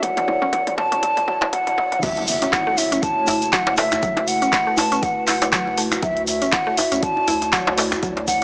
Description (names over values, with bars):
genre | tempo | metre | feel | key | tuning
afro house | 120 BPM | 4/4 | swing 57% on 16ths | F# minor | A4 = 437 Hz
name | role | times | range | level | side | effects
breathy mellow silver concert flute | melody | 0.0-8.4 s | E5 to A5 | -24 LUFS | equal | tape echo
dark analog pad | sustained chords | 0.0-8.4 s | A3 to D5 | -30 LUFS | equal | chorus, phaser, sidechain pumping
mallet-like synth pluck | arpeggios | 0.0-8.2 s | F#3 to E4 | -30 LUFS | equal | chorus, phaser, sidechain pumping, tape echo
round analog bass | bass | 0.0-8.4 s | E1 to D2 | -39 LUFS | equal | sidechain pumping
deep house drum kit | drums | 0.0-8.4 s | crash cymbal, finger snaps, handclaps, hi-hat, toms | -26 LUFS | equal | none
electronic kick drum | drums | 0.0-8.4 s | none | -32 LUFS | equal | high-pass filter on kick, high-pass filter on room
djembe | percussion | 0.0-8.4 s | none | -27 LUFS | equal | none
tube shaker | percussion | 2.0-8.4 s | none | -32 LUFS | equal | none
impact | sound effects | 2.0-4.0 s | none | -37 LUFS | equal | none
room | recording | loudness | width
light reverb | dry, gritty hardware recording, high-pass filter, small speaker sound | -20 LUFS | mono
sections
0.0-2.0 A section; 2.0-8.4 B section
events
build-up 0.0-2.0; drum fill 0.0-2.0; filter sweep on synth arpeggio sound 0.0-2.0; filter sweep on analog synth pad 0.0-2.0; drop 2.0-8.4; impact 2.0-4.0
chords
0.0 Dmaj9; 2.0 F#m7; 6.0 Dmaj9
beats
| 0.03 0.53 1.03 1.53 | 2.03 2.53 3.03 3.53 | 4.03 4.53 5.03 5.53 | 6.03 6.53 7.03 7.53 | 8.03